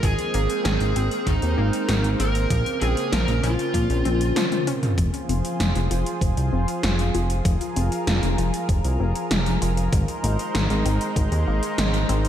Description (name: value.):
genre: synthwave.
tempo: 97 BPM.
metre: 4/4.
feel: straight.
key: F minor.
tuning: A4 = 440 Hz.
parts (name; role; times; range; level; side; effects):
lead guitar through a small cranked amp; melody; 0.0-4.6 s; Eb4 to Bb4; -26 LUFS; equal; overdrive, ping-pong delay.
lush unison pad; sustained chords; 0.0-12.3 s; Db3 to C5; -27 LUFS; right 1 dB; chorus, sidechain pumping.
analog pluck; arpeggios; 0.0-12.3 s; Eb3 to F4; -32 LUFS; left 4 dB; chorus, ping-pong delay.
fat analog bass; bass; 0.0-12.3 s; F1 to Bb2; -22 LUFS; equal; none.
80s electronic pad drums; drums; 0.0-12.3 s; hi-hat, snare drum, toms; -28 LUFS; equal; gated reverb on snare and toms, overdrive, studio reverb.
electronic kick drum; drums; 0.0-11.3 s; none; -24 LUFS; equal; overdrive, studio reverb.
room: light reverb, digital ambience.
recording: dark, warm production.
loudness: -20 LUFS.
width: side -10 dB against mid.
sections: 0.0-5.0 A section; 5.0-12.3 B section.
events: drum fill 4.4-5.0; filter sweep on synth arpeggio sound 5.0-12.3.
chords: 0.0 Abadd9; 2.5 Bbmadd9; 5.0 Fm; 9.9 Abadd9.